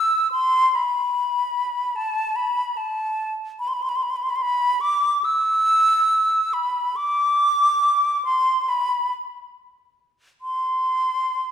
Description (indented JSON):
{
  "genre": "classical, free, expressive piece for unaccompanied flute",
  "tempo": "71 BPM",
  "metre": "4/4",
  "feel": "uneven beats, rubato",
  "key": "unclear",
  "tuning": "A4 = 437 Hz",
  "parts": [
    { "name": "bright silver concert flute", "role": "solo", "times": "0.0-11.5 s", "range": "A5 to E6", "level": "-19 LUFS", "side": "equal", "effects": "none" }
  ],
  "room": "wet recital hall reverb, RT60 1.4 s",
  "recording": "recorded in a church or concert hall",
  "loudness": "-19 LUFS",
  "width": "side -9 dB against mid",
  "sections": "0.0-11.5 A section",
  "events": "none",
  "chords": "none"
}